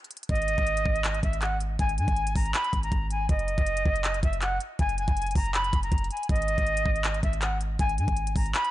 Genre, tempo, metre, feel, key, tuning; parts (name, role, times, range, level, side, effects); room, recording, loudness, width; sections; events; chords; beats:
hip hop, trap; 160 BPM; 4/4; half-time; G# minor; A4 = 436 Hz
trap drum kit; drums; 0.0-8.7 s; handclaps, hi-hat, kick drum; -28 LUFS; equal
jazz flute; melody; 0.3-8.7 s; D#5 to B5; -28 LUFS; equal; low-pass filter
warm 808-style bass; bass; 0.3-8.5 s; F#1 to G#2; -29 LUFS; equal
digital ambience; nothing above 10.3 kHz; -24 LUFS; side -15 dB against mid
0.0-8.7 A section
break 0.0
0.3 G#5; 3.3 F#sus2; 6.3 G#5
| 0.29 0.67 1.04 1.42 | 1.79 2.17 2.54 2.92 | 3.29 3.67 4.04 4.42 | 4.79 5.17 5.54 5.92 | 6.29 6.67 7.04 7.42 | 7.79 8.17 8.54